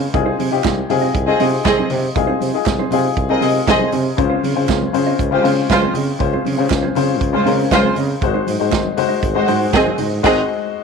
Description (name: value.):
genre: disco.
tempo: 119 BPM.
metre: 4/4.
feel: straight.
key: unclear.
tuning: A4 = 442 Hz.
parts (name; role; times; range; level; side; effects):
mellow electric guitar; accompaniment; 0.0-10.4 s; Ab3 to Eb5; -25 LUFS; right 15 dB; none.
warm baby grand piano; accompaniment; 0.0-10.8 s; Db3 to C5; -19 LUFS; left 13 dB; none.
warm tuba; bass; 0.0-10.4 s; Ab1 to Db3; -21 LUFS; right 2 dB; none.
warm soul drum kit; drums; 0.1-10.4 s; crash cymbal, hi-hat, kick drum, snare drum; -22 LUFS; right 4 dB; none.
congas; percussion; 0.1-10.1 s; none; -28 LUFS; left 10 dB; none.
group handclap; percussion; 0.6-9.9 s; none; -32 LUFS; right 14 dB; none.
warm studio string section; second line; 1.3-10.4 s; Ab3 to Eb5; -17 LUFS; right 2 dB; none.
room: light reverb, studio ambience.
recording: 1960s-style stereo with parts hard left and right.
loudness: -14 LUFS.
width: side -5 dB against mid.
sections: 0.0-10.8 A section.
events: band accent 10.2-10.8.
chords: 0.1 Fm7/C; 4.2 Dbmaj7; 8.2 Ab7.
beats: | 0.14 0.64 1.15 1.66 | 2.16 2.67 3.17 3.68 | 4.18 4.69 5.19 5.70 | 6.20 6.71 7.21 7.72 | 8.22 8.73 9.23 9.74 | 10.24 10.75.